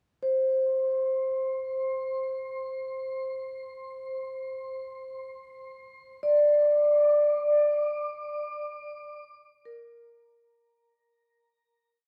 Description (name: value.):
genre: ambient.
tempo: free time.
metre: none.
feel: none.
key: unclear.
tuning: A4 = 442 Hz.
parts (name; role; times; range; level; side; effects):
vibraphone with medium mallets; solo; 0.2-10.9 s; Bb4 to D5; -28 LUFS; equal; tape echo.
room: wet shimmer reverb, RT60 7.7 s.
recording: none.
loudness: -27 LUFS.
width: mono.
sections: 0.2-10.5 A section.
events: fade-out 7.1-10.5.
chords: none.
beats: free time.